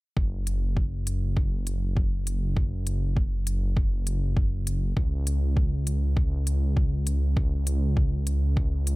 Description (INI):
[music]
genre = piano and strings electronica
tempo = 100 BPM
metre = 4/4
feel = straight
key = unclear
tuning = A4 = 440 Hz
[part]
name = dark detuned saw bass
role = bass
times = 0.2-9.0 s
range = F#1 to C#2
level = -25 LUFS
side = equal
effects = sidechain pumping
[part]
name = electronic kick drum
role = drums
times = 0.2-8.7 s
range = none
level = -25 LUFS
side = equal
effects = none
[part]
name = electronic hi-hat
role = drums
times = 0.5-9.0 s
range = none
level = -35 LUFS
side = left 2 dB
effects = none
[sound]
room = digital ambience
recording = none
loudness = -24 LUFS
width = side -21 dB against mid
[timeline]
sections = 0.2-9.0 A section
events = none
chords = none